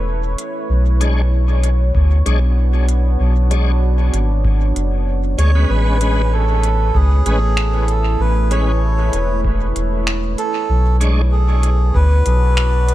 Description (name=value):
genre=ambient dub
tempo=96 BPM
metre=4/4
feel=swing 54% on 16ths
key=B dorian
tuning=A4 = 439 Hz
part: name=deep dark ambient pad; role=sustained chords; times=0.0-12.9 s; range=A3 to D5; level=-25 LUFS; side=right 1 dB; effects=chorus, built-in reverb
part: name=soft dub sub bass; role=bass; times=0.0-12.9 s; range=E1 to D2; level=-14 LUFS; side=equal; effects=none
part: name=organic electronic drum kit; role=drums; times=0.4-12.9 s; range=finger snaps, hi-hat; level=-26 LUFS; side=equal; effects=dub echo
part: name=bright tonewheel organ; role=stabs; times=1.0-11.2 s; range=G#3 to C#5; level=-26 LUFS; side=left 2 dB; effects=overdrive, chorus vibrato, slow rotary speaker, dub echo
part: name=electronic kick drum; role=drums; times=1.9-12.1 s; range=none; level=-21 LUFS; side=equal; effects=none
part: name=melodica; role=melody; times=5.4-12.9 s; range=G#4 to C#5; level=-23 LUFS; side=right 1 dB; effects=dub echo
room=digital ambience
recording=echo-heavy mix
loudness=-14 LUFS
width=side -15 dB against mid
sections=0.0-12.9 A section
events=none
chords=0.0 Aadd9; 0.7 Bm69; 5.7 Amaj9; 10.7 Bm69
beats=0.07 | 0.70 1.32 1.95 2.57 | 3.20 3.82 4.45 5.07 | 5.70 6.32 6.95 7.57 | 8.20 8.82 9.45 10.07 | 10.70 11.32 11.95 12.57